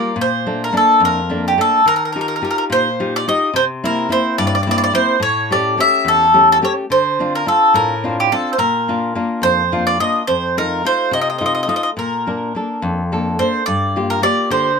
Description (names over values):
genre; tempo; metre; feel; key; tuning
italian folk, Italian serenade; 71 BPM (dotted quarters); 6/8; straight; Bb major; A4 = 440 Hz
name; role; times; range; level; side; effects
bowl-back mandolin; melody; 0.0-14.8 s; G4 to E5; -15 LUFS; right 1 dB; none
nylon-string guitar; accompaniment; 0.0-14.8 s; E2 to Bb4; -20 LUFS; left 2 dB; none
room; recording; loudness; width
little or no reverb; minimal, uncompressed stereo recording; -14 LUFS; side -5 dB against mid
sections
0.2-13.7 A section; 13.7-14.8 B section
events
nylon-string guitar fill 0.0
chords
0.2 Bbmaj7; 1.9 Ebadd9; 3.5 C7; 5.2 A7; 6.9 Dm7; 8.6 Bb; 10.3 F7; 12.0 Bbmaj7; 13.7 Gm7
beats
| 0.17 1.02 | 1.86 2.71 | 3.55 4.39 | 5.22 6.07 | 6.91 7.75 | 8.60 9.44 | 10.28 11.12 | 11.96 12.81 | 13.66 14.51